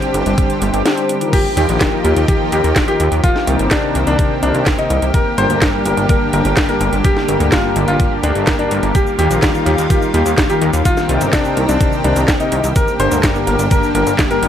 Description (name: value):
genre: italo disco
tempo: 126 BPM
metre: 4/4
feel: straight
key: unclear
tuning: A4 = 444 Hz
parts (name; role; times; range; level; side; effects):
- lush unison pad; sustained chords; 0.0-14.5 s; D3 to G4; -20 LUFS; right 1 dB; chorus
- mellow synth brass; stabs; 0.0-14.5 s; G2 to C5; -21 LUFS; left 3 dB; chorus, cassette tape
- house drum kit; drums; 0.0-14.5 s; cabasa, crash cymbal, handclaps, hi-hat, snare drum; -20 LUFS; equal; none
- chorused synth bass; bass; 0.1-14.5 s; G1 to Eb2; -18 LUFS; equal; none
- electronic kick drum; drums; 0.4-14.3 s; none; -17 LUFS; equal; none
- clear concert grand piano; melody; 1.3-14.5 s; D4 to C5; -19 LUFS; left 2 dB; ping-pong delay
room: light reverb, digital ambience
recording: none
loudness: -12 LUFS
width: side -9 dB against mid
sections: 0.0-1.3 A section; 1.3-14.5 B section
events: none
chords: 0.0 Gsus4; 1.3 Ebadd9; 3.2 Cm7; 5.1 Gm; 8.9 Ebadd9; 10.9 Cm7; 12.8 Gm